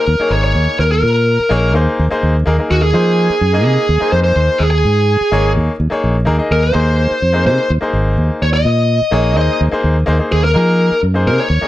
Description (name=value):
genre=jazz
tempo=126 BPM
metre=4/4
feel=straight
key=unclear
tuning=A4 = 440 Hz
part: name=bluesy overdriven lead guitar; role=melody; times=0.0-11.7 s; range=Gb4 to Eb5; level=-15 LUFS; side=equal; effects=distortion
part: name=bright baby grand piano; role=accompaniment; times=0.0-11.7 s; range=Bb3 to Eb5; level=-18 LUFS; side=left 2 dB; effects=none
part: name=fingered electric bass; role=bass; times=0.1-11.7 s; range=Ab1 to F3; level=-14 LUFS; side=equal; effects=none
room=little or no reverb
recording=dark, warm production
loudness=-11 LUFS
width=side -14 dB against mid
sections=0.0-11.7 A section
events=none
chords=0.1 Db5; 1.7 Ab69/Eb; 3.9 Bbm11/Eb; 5.8 Eb7sus4; 6.8 Ab69/Eb; 7.7 Db5; 9.4 Ab69/Eb